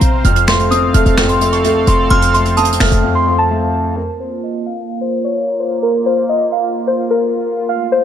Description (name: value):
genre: hip hop, trap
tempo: 129 BPM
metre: 4/4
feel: half-time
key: unclear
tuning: A4 = 440 Hz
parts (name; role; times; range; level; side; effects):
- muted felt-like synth keys; melody; 0.0-8.0 s; Bb4 to F6; -16 LUFS; equal; chorus, low-pass filter, ping-pong delay
- dark concert grand piano; accompaniment; 0.0-4.0 s; F2 to C5; -16 LUFS; left 2 dB; none
- sweeping resonant pad; sustained chords; 0.0-8.0 s; A3 to F5; -22 LUFS; right 4 dB; chorus, low-pass filter
- short 808-style bass; bass; 0.0-3.0 s; F1 to C2; -15 LUFS; equal; none
- jazz brush drum kit; drums; 0.0-3.0 s; finger snaps, hi-hat, snare drum; -19 LUFS; right 2 dB; none
- delicate synth tine bell; second line; 2.1-3.9 s; A5 to C6; -20 LUFS; right 2 dB; chorus, phaser, ping-pong delay
room: light reverb, small room ambience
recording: lossy compression artefacts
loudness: -12 LUFS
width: side -9 dB against mid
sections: 0.0-4.0 A section; 4.0-8.0 B section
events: break 3.0-4.0; filter sweep 4.0-8.0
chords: 0.2 F; 4.0 Bb5